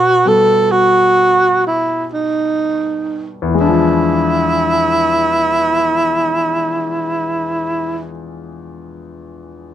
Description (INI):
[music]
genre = jazz ballad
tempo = 41 BPM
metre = 4/4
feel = swing 68% on 8ths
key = unclear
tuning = A4 = 438 Hz
[part]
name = breathy tenor saxophone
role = melody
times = 0.0-8.0 s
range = D#4 to A4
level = -13 LUFS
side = right 2 dB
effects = none
[part]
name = warm grand piano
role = accompaniment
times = 0.0-9.7 s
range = E2 to D#5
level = -20 LUFS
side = left 4 dB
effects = none
[sound]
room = light reverb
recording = none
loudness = -12 LUFS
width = side -11 dB against mid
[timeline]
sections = 0.0-3.5 A section; 3.5-9.4 B section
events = slowing down 0.0-3.5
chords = 0.0 B7b13; 3.5 E7b9